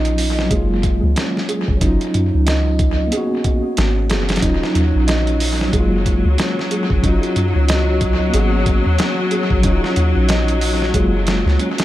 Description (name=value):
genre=trip hop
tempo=92 BPM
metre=4/4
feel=swing 59% on 16ths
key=Eb minor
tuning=A4 = 440 Hz
part: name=mellow tine electric piano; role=accompaniment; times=0.0-11.8 s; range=Gb3 to Gb4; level=-21 LUFS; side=equal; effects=harmonic tremolo, tape echo
part: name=felt-muted upright piano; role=arpeggios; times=0.0-11.8 s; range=Db4 to Eb5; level=-25 LUFS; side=right 2 dB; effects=low-pass filter, tape echo
part: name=soft 808-style bass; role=bass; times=0.0-11.6 s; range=Eb1 to Gb2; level=-18 LUFS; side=equal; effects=none
part: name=trip hop sampler-style drum kit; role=drums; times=0.1-11.8 s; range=hi-hat, kick drum, snare drum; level=-20 LUFS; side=equal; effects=tape echo
part: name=clear symphonic string section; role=sustained chords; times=4.4-11.8 s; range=Gb3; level=-23 LUFS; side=left 3 dB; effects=stereo widening
room=light reverb, digital ambience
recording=echo-heavy mix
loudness=-14 LUFS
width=side -14 dB against mid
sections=0.0-11.8 A section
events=none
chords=0.0 Ebm9; 0.5 Gbmaj9; 1.8 Ebm9/Gb; 3.1 Abm11; 4.4 Ebm9; 5.7 Gbmaj9; 7.0 Ebm9/Gb; 8.3 Abm11; 9.6 Ebm9; 10.9 Gbmaj9